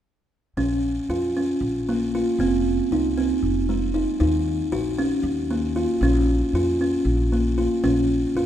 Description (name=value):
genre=contemporary instrumental, chamber music in an uneven meter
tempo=231 BPM (eighths)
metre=7/8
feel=straight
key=Bb minor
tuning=A4 = 441 Hz
part: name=buzzing kalimba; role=arpeggios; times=0.6-8.5 s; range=Ab3 to Gb4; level=-21 LUFS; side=equal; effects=none
part: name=upright bass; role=bass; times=0.6-8.5 s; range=F1 to F2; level=-26 LUFS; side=equal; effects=none
room=moderate concert hall reverb, RT60 2.0 s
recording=none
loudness=-20 LUFS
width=side -11 dB against mid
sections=0.6-8.5 A section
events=none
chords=0.6 Bbm; 2.4 F7(no3); 4.2 Eb7(no3); 6.0 Bbm